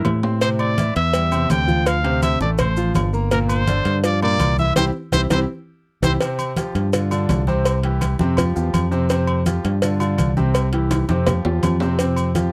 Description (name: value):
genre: latin, salsa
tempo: 166 BPM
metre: 4/4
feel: straight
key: F major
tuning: A4 = 440 Hz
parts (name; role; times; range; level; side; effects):
- bright trumpet; melody; 0.0-6.1 s; Bb4 to G5; -24 LUFS; equal; none
- bright grand piano; accompaniment; 0.0-12.5 s; Bb2 to C6; -26 LUFS; equal; none
- timbales and agogo bells; percussion; 0.0-12.3 s; none; -32 LUFS; equal; none
- fingered electric bass; bass; 0.1-12.5 s; G1 to A2; -22 LUFS; equal; none
- congas; percussion; 0.1-12.5 s; none; -27 LUFS; equal; none
- cowbell; percussion; 0.1-12.5 s; none; -27 LUFS; equal; none
- maracas; percussion; 0.4-12.5 s; none; -40 LUFS; equal; none
room: little or no reverb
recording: dry, close 1970s-style studio recording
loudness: -19 LUFS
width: mono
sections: 0.0-6.2 A section; 6.2-12.5 B section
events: drum fill 0.0-0.4, 5.1-6.2, 10.9-12.0; band accent 4.8-6.2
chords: 0.4 Am7; 1.9 Dm7; 3.3 Gm7; 4.8 C; 6.2 Fsus2; 6.9 G5; 7.7 C; 8.4 Fsus2; 9.8 G5; 10.5 C; 11.3 Fsus2